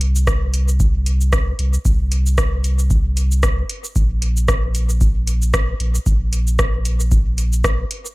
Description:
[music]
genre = dub techno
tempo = 114 BPM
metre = 4/4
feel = swing 56% on 16ths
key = unclear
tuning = A4 = 440 Hz
[part]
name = warm sub bass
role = bass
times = 0.0-7.8 s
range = Bb1 to C2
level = -18 LUFS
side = equal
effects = tube saturation, sidechain pumping
[part]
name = booming analog drum machine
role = drums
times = 0.0-8.1 s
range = hi-hat, rim click, shaker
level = -24 LUFS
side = equal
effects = dub echo
[part]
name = electronic kick drum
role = drums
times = 0.3-7.8 s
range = none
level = -18 LUFS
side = equal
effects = none
[sound]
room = little or no reverb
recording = echo-heavy mix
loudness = -15 LUFS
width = side -22 dB against mid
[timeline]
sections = 0.0-8.1 A section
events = none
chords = none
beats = 0.27 0.80 1.33 | 1.85 2.38 2.90 3.43 | 3.96 4.48 5.01 5.54 | 6.06 6.59 7.12 7.64

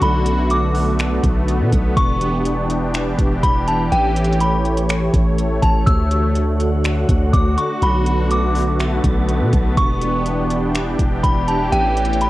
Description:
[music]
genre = hip hop, atmospheric cloud-rap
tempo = 123 BPM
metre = 4/4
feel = half-time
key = E dorian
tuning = A4 = 440 Hz
[part]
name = delicate synth tine bell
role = melody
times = 0.0-12.3 s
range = G5 to E6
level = -22 LUFS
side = equal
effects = chorus, low-pass filter, cassette tape, tape echo
[part]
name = sweeping resonant pad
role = sustained chords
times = 0.0-12.3 s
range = D3 to C#5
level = -20 LUFS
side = equal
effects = chorus, sidechain pumping, cassette tape
[part]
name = long sustained 808-style bass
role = bass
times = 0.0-12.3 s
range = E1 to B2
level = -20 LUFS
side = equal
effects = none
[part]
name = smooth R&B drum kit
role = drums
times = 0.0-12.3 s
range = finger snaps, hi-hat, kick drum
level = -19 LUFS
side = equal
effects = cassette tape
[part]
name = wind-like tuned noise texture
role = texture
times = 6.2-12.3 s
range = C#4 to A5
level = -32 LUFS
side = equal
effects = built-in reverb, cassette tape
[sound]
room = little or no reverb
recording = home recording on cassette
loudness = -15 LUFS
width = side -17 dB against mid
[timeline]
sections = 0.0-12.3 A section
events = none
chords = 0.0 Bm7; 2.0 Em7; 3.9 A7; 5.9 Dmaj7; 7.8 Bm7; 9.8 Em7; 11.7 A7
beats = | 0.02 0.51 0.99 1.48 | 1.97 2.46 2.94 3.43 | 3.92 4.41 4.89 5.38 | 5.87 6.36 6.85 7.33 | 7.82 8.31 8.80 9.29 | 9.77 10.26 10.75 11.24 | 11.72 12.21

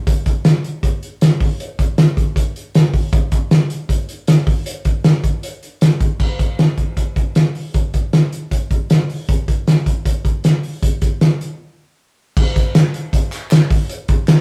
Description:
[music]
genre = indie pop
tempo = 156 BPM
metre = 4/4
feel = straight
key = none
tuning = none
[part]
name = loose indie drum kit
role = drums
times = 0.1-14.4 s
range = crash cymbal, hi-hat, kick drum, snare drum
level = -16 LUFS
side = equal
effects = none
[part]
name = group handclap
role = percussion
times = 12.8-14.4 s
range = none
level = -33 LUFS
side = equal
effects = none
[sound]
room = moderate studio reverb, RT60 0.7 s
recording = rough rehearsal-room recording, warm saturation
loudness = -17 LUFS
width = mono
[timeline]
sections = 0.0-6.2 A section; 6.2-12.4 B section; 12.4-14.4 A section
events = break 11.6-12.4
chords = none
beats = | 0.07 0.45 0.83 1.21 | 1.60 1.98 2.36 2.74 | 3.13 3.51 3.89 4.28 | 4.66 5.04 5.43 5.81 | 6.20 6.58 6.97 7.36 | 7.74 8.13 8.51 8.90 | 9.29 9.67 10.06 10.44 | 10.83 11.21 11.60 11.98 | 12.37 12.75 13.13 13.52 | 13.90 14.28

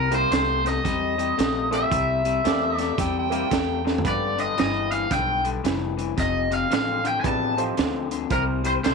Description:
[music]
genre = electric blues shuffle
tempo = 113 BPM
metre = 4/4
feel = swing 63% on 8ths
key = unclear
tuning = A4 = 440 Hz
[part]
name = raw garage guitar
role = melody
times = 0.0-8.9 s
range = Bb4 to A5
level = -24 LUFS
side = equal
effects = overdrive
[part]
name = electric guitar through a small old amp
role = riff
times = 0.0-8.9 s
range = F2 to A3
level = -27 LUFS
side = left 13 dB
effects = none
[part]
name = upright bass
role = bass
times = 0.0-8.9 s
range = F1 to E2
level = -30 LUFS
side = right 1 dB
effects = none
[part]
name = clear upright piano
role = accompaniment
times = 0.1-8.9 s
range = Bb3 to C5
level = -32 LUFS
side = right 14 dB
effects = none
[part]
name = crunchy breakbeat drum kit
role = drums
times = 0.1-8.9 s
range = hi-hat, kick drum, snare drum, toms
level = -28 LUFS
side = right 6 dB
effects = none
[part]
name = overdriven harmonica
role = second line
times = 2.5-3.9 s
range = A4 to G5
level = -30 LUFS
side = right 10 dB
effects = none
[sound]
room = moderate spring reverb, RT60 2.1 s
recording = 1960s-style stereo with parts hard left and right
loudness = -21 LUFS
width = side -4 dB against mid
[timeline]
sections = 0.0-8.9 A section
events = drum fill 3.8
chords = 0.0 C7; 4.0 G7; 6.2 F7; 8.3 C7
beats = 0.32 0.85 1.38 | 1.92 2.45 2.98 3.51 | 4.05 4.58 5.11 5.64 | 6.18 6.71 7.24 7.78 | 8.31 8.84

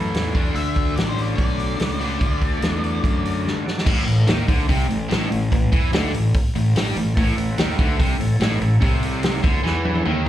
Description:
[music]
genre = blues rock power trio and southern rock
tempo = 145 BPM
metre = 4/4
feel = straight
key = unclear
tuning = A4 = 440 Hz
[part]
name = overdriven tonewheel organ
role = sustained chords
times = 0.0-3.9, 7.1-10.3 s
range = E4 to E5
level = -35 LUFS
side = right 4 dB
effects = slow rotary speaker
[part]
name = distorted electric guitar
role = riff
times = 0.0-10.3 s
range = A2 to D4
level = -22 LUFS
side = equal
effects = distortion, slapback echo
[part]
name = fuzz fingered electric bass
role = bass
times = 0.0-10.3 s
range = A1 to G2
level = -24 LUFS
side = equal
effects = overdrive
[part]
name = vintage drum kit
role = drums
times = 0.1-10.3 s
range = crash cymbal, hi-hat, kick drum, snare drum, toms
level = -22 LUFS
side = equal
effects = none
[part]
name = octave-fuzz lead guitar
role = melody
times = 0.6-3.4 s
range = C5 to E5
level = -30 LUFS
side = left 2 dB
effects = distortion, slapback echo, analog delay
[sound]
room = studio ambience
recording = live gig heard through the venue's PA, club reverb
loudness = -18 LUFS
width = side -12 dB against mid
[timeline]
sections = 0.0-3.9 A section; 3.9-10.3 B section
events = drum fill 3.5-3.9, 9.6-10.3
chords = 0.4 D; 3.9 A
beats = 0.15 | 0.56 0.97 1.39 1.80 | 2.21 2.63 3.04 3.46 | 3.87 4.28 4.70 5.11 | 5.52 5.93 6.34 6.76 | 7.17 7.58 7.99 8.40 | 8.82 9.23 9.64 10.05

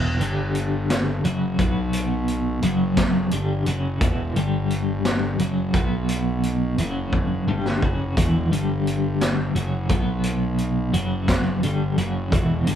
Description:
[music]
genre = psychedelic rock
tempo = 58 BPM (dotted quarters)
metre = 6/8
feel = straight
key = E dorian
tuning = A4 = 438 Hz
[part]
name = twelve-string electric guitar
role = riff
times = 0.0-12.8 s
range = E2 to B3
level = -23 LUFS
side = equal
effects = tremolo
[part]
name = fuzz picked electric bass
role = bass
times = 0.0-12.8 s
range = E1 to B1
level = -26 LUFS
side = equal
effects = overdrive
[part]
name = vintage drum kit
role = drums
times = 0.2-12.8 s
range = hi-hat, kick drum, snare drum, toms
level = -25 LUFS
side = equal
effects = none
[sound]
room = light reverb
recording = band playing live in one room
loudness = -20 LUFS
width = side -9 dB against mid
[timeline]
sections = 0.0-12.8 A section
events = drum fill 7.1-8.2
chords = 0.2 G5; 1.2 F#5; 1.6 B5; 2.6 F#5; 3.3 Em; 4.4 G5; 5.4 F#5; 5.7 B5; 6.8 F#5; 7.5 Em; 8.5 G5; 9.6 F#5; 9.9 B5; 10.9 F#5; 11.6 Em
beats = 0.90 | 1.94 2.98 | 4.01 5.05 | 6.09 7.13 | 8.17 9.20 | 10.24 11.28 | 12.32

